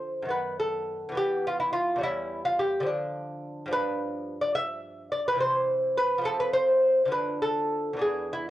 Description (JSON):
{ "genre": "classical, baroque-style dance for lute", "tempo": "70 BPM (dotted quarters)", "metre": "6/8", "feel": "rubato", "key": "unclear", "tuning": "A4 = 442 Hz", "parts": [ { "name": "lute", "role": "solo", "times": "0.0-8.5 s", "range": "E2 to E5", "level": "-25 LUFS", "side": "equal", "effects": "cassette tape" } ], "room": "light reverb, small room ambience", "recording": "home recording on cassette", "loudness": "-25 LUFS", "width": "side -14 dB against mid", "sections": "0.0-8.5 A section", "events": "none", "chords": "0.3 B7/F#; 1.2 E5; 2.0 Em6; 2.9 Dm; 3.7 G7; 5.4 C; 6.3 F; 7.1 Dm" }